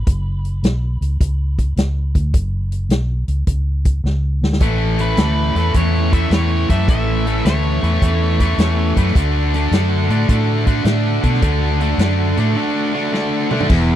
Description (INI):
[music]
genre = blues rock power trio and southern rock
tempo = 106 BPM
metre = 4/4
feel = swing 67% on 8ths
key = unclear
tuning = A4 = 440 Hz
[part]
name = vintage muted fingered electric bass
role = bass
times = 0.0-14.0 s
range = E1 to B2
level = -18 LUFS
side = equal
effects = none
[part]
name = vintage drum kit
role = drums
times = 0.1-13.9 s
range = crash cymbal, hi-hat, kick drum, snare drum, toms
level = -17 LUFS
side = equal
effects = none
[part]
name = overdriven tonewheel organ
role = sustained chords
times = 4.6-14.0 s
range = B3 to F#5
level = -29 LUFS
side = right 7 dB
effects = slow rotary speaker, chorus vibrato
[part]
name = distorted electric guitar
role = riff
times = 4.6-14.0 s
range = E2 to D4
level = -19 LUFS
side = left 1 dB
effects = overdrive
[part]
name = octave-fuzz lead guitar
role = melody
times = 5.0-8.9 s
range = B4 to E5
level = -26 LUFS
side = equal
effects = distortion
[sound]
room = little or no reverb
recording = dry, close 1970s-style studio recording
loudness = -15 LUFS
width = side -12 dB against mid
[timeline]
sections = 0.0-13.7 A section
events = drum fill 4.0-4.6, 13.1-13.7; break 12.6-13.7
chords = 0.1 N.C.; 4.6 A; 9.2 D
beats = | 0.07 0.64 1.21 1.77 | 2.34 2.91 3.48 4.05 | 4.61 5.18 5.75 6.32 | 6.88 7.45 8.02 8.59 | 9.15 9.72 10.29 10.86 | 11.43 12.00 12.56 13.13 | 13.70